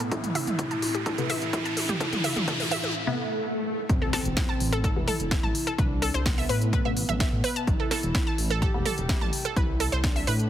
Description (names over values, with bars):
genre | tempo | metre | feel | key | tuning
melodic techno | 127 BPM | 4/4 | straight | A minor | A4 = 436 Hz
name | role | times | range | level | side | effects
soft octave-layered synth lead | melody | 0.0-10.5 s | B3 to G4 | -32 LUFS | equal | chorus, phaser, cassette tape, sidechain pumping, ping-pong delay
analog pluck | arpeggios | 0.0-10.3 s | E4 to A5 | -31 LUFS | right 1 dB | chorus, cassette tape, sidechain pumping, dub echo
bowed-like drone | drone | 0.0-3.0 s | A2 | -41 LUFS | right 2 dB | built-in reverb, sidechain pumping
techno drum kit | drums | 0.0-10.5 s | hi-hat, snare drum, toms | -31 LUFS | equal | none
riser, swell and impact | sound effects | 0.0-5.8 s | none | -32 LUFS | equal | none
electronic kick drum | drums | 0.1-10.1 s | none | -28 LUFS | equal | high-pass filter on kick, high-pass filter on room
filtered dub chord stab | stabs | 1.2-8.9 s | C3 to B3 | -32 LUFS | left 2 dB | phaser, sidechain pumping, dub echo
dark detuned saw bass | bass | 3.9-10.5 s | E1 to A2 | -28 LUFS | equal | sidechain pumping
room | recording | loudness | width
light reverb, digital ambience | heavily compressed radio sound, multiband compression | -24 LUFS | side -11 dB against mid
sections
0.0-3.9 A section; 3.9-10.5 B section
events
build-up 0.0-3.9; drum fill 0.0-3.0; riser 0.0-3.0; break 3.0-3.9; swell 3.0-3.9; drop 3.9-10.5; impact 3.9-5.8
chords
0.0 A5; 3.9 Amadd9